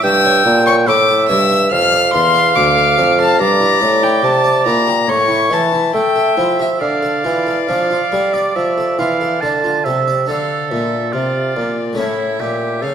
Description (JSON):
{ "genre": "classical, baroque-style sonata movement with continuo", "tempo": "71 BPM", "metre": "4/4", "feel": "straight", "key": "D minor", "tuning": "A4 = 440 Hz", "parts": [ { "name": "warm violin", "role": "melody", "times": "0.0-12.9 s", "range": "D5 to F6", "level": "-18 LUFS", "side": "left 7 dB", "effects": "none" }, { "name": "clear oboe", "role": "second line", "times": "0.0-12.9 s", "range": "E4 to A5", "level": "-17 LUFS", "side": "right 5 dB", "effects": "none" }, { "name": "harpsichord", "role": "accompaniment", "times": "0.0-12.9 s", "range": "D2 to E5", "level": "-22 LUFS", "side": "left 1 dB", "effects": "none" }, { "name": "warm bassoon", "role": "bass", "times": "0.0-12.9 s", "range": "D2 to A3", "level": "-17 LUFS", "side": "right 1 dB", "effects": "none" } ], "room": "wet recital hall reverb, RT60 1.4 s", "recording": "none", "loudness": "-12 LUFS", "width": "side -8 dB against mid", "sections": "0.0-10.3 A section; 10.3-12.9 B section", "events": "none", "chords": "0.0 A7/G; 1.7 Dm; 3.4 Em7b5/G; 5.1 A5; 6.8 Dm; 12.0 A" }